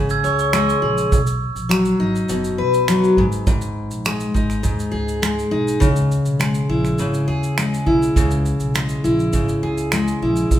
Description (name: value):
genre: acoustic pop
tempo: 102 BPM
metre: 4/4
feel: straight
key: unclear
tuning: A4 = 444 Hz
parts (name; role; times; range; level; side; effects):
- picked steel-string acoustic guitar; accompaniment; 0.0-10.6 s; G#2 to C#5; -18 LUFS; left 1 dB; none
- upright bass; bass; 0.0-10.6 s; F#1 to D#2; -26 LUFS; equal; none
- glockenspiel with soft plastic mallets; second line; 0.1-1.1 s; C#6 to G#6; -24 LUFS; right 6 dB; none
- unplugged drum kit; drums; 0.1-10.6 s; finger snaps, kick drum, shaker; -22 LUFS; right 2 dB; none
room: moderate large studio reverb, RT60 1.2 s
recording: band playing live in one room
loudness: -16 LUFS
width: side -11 dB against mid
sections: 0.0-10.6 A section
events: none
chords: 0.0 C#5; 1.1 B; 3.2 G#m; 5.8 C#m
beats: 0.54 | 1.12 1.71 2.30 2.88 | 3.47 4.06 4.65 5.23 | 5.82 6.41 6.99 7.58 | 8.17 8.75 9.34 9.93 | 10.51